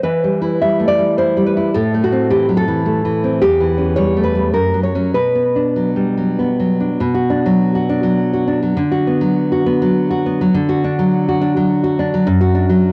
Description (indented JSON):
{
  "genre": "romantic piece for solo classical guitar",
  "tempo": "95-110 BPM",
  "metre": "3/4",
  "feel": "rubato",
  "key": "B minor from 3.4 s",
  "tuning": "A4 = 440 Hz",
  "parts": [
    { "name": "nylon-string guitar", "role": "solo", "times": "0.0-12.9 s", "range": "E2 to E5", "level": "-16 LUFS", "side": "equal", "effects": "cassette tape" }
  ],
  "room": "light reverb",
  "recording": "home recording on cassette",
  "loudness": "-16 LUFS",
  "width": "mono",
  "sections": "0.0-7.0 A section; 7.0-12.9 B section",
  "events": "none",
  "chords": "0.0 Em; 1.8 Am; 3.4 C#dim/E; 4.5 F#; 5.2 Bm; 8.8 Bm/D; 10.5 D; 12.3 D/F#"
}